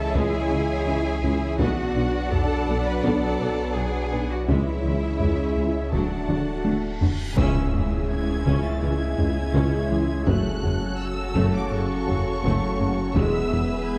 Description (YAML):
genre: cinematic, hybrid orchestral and electronic film score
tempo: 83 BPM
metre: 4/4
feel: straight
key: C# phrygian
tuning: A4 = 440 Hz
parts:
  - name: clear symphonic violin section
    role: melody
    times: 0.0-14.0 s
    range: D5 to A6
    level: -39 LUFS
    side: equal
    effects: none
  - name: rich studio violin section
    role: second line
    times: 0.0-14.0 s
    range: G#4 to A5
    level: -38 LUFS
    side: equal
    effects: none
  - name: clear symphonic viola section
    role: accompaniment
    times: 0.0-14.0 s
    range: C#3 to G#4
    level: -33 LUFS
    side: equal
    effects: none
  - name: airy breathy pad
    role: sustained chords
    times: 0.0-14.0 s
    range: E3 to F#5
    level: -35 LUFS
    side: equal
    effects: chorus, phaser
  - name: clear trombone section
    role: sustained chords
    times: 0.0-14.0 s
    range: A2 to B3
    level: -38 LUFS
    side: equal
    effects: none
  - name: dark French horn section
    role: sustained chords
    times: 0.0-14.0 s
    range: C#3 to G#4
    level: -35 LUFS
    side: equal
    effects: none
  - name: pure sine sub bass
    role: bass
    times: 0.0-14.0 s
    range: D1 to C#2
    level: -32 LUFS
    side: equal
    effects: none
  - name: warm studio cello section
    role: bass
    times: 0.0-13.6 s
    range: C#2 to B4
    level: -34 LUFS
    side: equal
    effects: none
  - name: soft round pluck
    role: arpeggios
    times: 0.1-13.7 s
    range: C#3 to B4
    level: -35 LUFS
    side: equal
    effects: none
  - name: clear symphonic double bass section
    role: bass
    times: 0.1-13.6 s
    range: E1 to D2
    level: -33 LUFS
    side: equal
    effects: none
  - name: mellow tuba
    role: bass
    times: 0.1-13.7 s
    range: E1 to D2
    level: -34 LUFS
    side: equal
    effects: none
  - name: taiko ensemble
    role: drums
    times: 0.1-13.9 s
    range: none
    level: -30 LUFS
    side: equal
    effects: none
  - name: reverse cymbal and impact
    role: sound effects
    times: 7.0-10.3 s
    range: none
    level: -35 LUFS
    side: equal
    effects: none
room: moderate scoring stage reverb, RT60 1.7 s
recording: dark, warm production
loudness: -24 LUFS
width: mono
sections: 0.0-7.4 A section; 7.4-14.0 B section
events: drum fill 6.3-7.4; reverse cymbal 7.0-7.4; band accent 7.4-8.1; impact 7.4-10.3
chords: 0.0 C#m; 1.6 Bm; 4.5 C#m; 5.9 D; 7.4 C#m; 10.3 F#m; 13.2 E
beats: 0.15 0.87 | 1.59 2.32 3.04 3.76 | 4.49 5.21 5.93 6.65 | 7.38 8.10 8.82 9.54 | 10.27 10.99 11.71 12.44 | 13.16 13.88